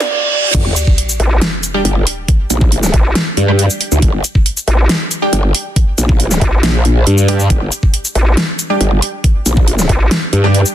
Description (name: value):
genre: heavy wobble dubstep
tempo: 138 BPM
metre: 4/4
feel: half-time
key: G minor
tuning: A4 = 441 Hz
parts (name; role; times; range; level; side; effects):
- dark grand piano; melody; 0.0-0.5 s; D5; -20 LUFS; right 3 dB; digital delay
- dubstep drum kit; drums; 0.0-10.7 s; crash cymbal, hi-hat, shaker, snare drum; -17 LUFS; equal; overdrive
- riser, reverse cymbal and sub drop; sound effects; 0.0-2.3 s; none; -17 LUFS; right 2 dB; none
- growl bass; bass; 0.5-10.6 s; G1 to G2; -12 LUFS; equal; chorus, overdrive
- electronic kick drum; drums; 0.5-10.0 s; none; -12 LUFS; equal; overdrive
- vowel-sweep wobble bass; bass; 1.2-10.1 s; A1; -11 LUFS; equal; chorus, overdrive
- orchestra-hit-like synth stab; stabs; 1.7-10.5 s; G3 to G4; -19 LUFS; right 2 dB; built-in reverb, digital delay
room: little or no reverb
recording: dense, heavily limited modern master, high-pass filter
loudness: -11 LUFS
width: side -11 dB against mid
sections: 0.5-10.7 A section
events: riser 0.0-0.5; reverse cymbal 0.0-0.5; drop 0.5-10.7; impact 0.5-2.3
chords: 0.0 N.C.; 0.5 Gm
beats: 0.11 | 0.55 0.98 1.42 1.85 | 2.29 2.72 3.15 3.59 | 4.02 4.46 4.89 5.33 | 5.76 6.20 6.63 7.07 | 7.50 7.94 8.37 8.81 | 9.24 9.68 10.11 10.54